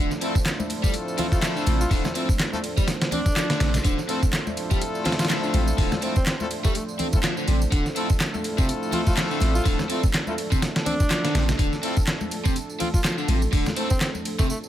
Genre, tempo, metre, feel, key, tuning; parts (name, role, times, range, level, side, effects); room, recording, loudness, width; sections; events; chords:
breakbeat, breaks; 124 BPM; 4/4; swing 57% on 16ths; D minor; A4 = 440 Hz
dark analog pad; sustained chords; 0.0-14.7 s; F3 to C5; -32 LUFS; right 2 dB; chorus, sidechain pumping
overdriven electric guitar; riff; 0.0-14.5 s; C3 to C4; -29 LUFS; equal; tube saturation, vintage 12-bit sampler grit, tape echo
warm 808-style bass; bass; 0.0-13.6 s; D1 to A1; -23 LUFS; equal
dusty soul sampler-style drum kit; drums; 0.1-14.5 s; hi-hat, kick drum, snare drum; -23 LUFS; equal
garage drum kit; drums; 0.1-14.7 s; handclaps, ride cymbal, tambourine; -32 LUFS; right 2 dB; overdrive
brilliant horn section; stabs; 0.2-13.9 s; A3 to A4; -31 LUFS; left 3 dB; tape echo
congas; percussion; 0.6-14.2 s; -33 LUFS; left 3 dB
clear alto saxophone; melody; 1.2-14.6 s; A3 to F4; -32 LUFS; equal; small speaker sound, tape echo
digital ambience; -21 LUFS; side -12 dB against mid
0.0-14.7 A section
break 14.5
0.0 Dm7